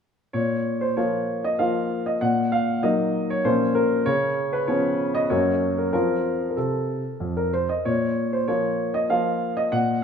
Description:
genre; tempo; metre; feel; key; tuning
classical-period piano sonatina; 96 BPM; 3/4; rubato; Bb minor; A4 = 440 Hz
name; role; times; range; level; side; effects
clear concert grand piano; solo; 0.3-10.0 s; F2 to Gb5; -21 LUFS; equal; none
room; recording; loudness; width
moderate recital hall reverb, RT60 1.7 s; minimal, uncompressed stereo recording; -21 LUFS; side -7 dB against mid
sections
0.3-10.0 A section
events
none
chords
0.3 Bb5; 2.2 Ebm/Bb; 3.4 Bbm; 4.1 Db7; 5.3 Gb; 5.9 F; 7.8 Bb5

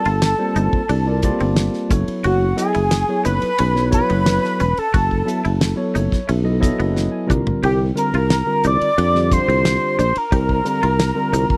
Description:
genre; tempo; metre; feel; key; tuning
electric jazz fusion; 89 BPM; 4/4; straight; unclear; A4 = 440 Hz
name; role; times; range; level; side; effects
octave-doubled lead; melody; 0.0-11.6 s; F#4 to D5; -24 LUFS; equal; chorus
breathy concert flute; second line; 0.0-11.6 s; F#5 to D6; -28 LUFS; equal; none
tine electric piano; accompaniment; 0.0-11.6 s; D3 to Bb5; -25 LUFS; equal; lush chorus
twangy electric guitar; stabs; 0.1-11.6 s; B3 to G4; -32 LUFS; equal; subtle chorus
sustaining fretless electric bass; bass; 0.1-11.5 s; E1 to F2; -21 LUFS; equal; none
damped 70s drum kit; drums; 0.1-11.6 s; hi-hat, kick drum, ride cymbal, snare drum, toms; -23 LUFS; equal; none
room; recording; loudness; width
little or no reverb; dry, close 1970s-style studio recording; -18 LUFS; mono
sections
0.0-11.6 A section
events
tine electric piano fill 5.6-7.6; drum fill 7.0-7.6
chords
0.0 Gm11; 1.9 F#m11; 7.3 C9sus4

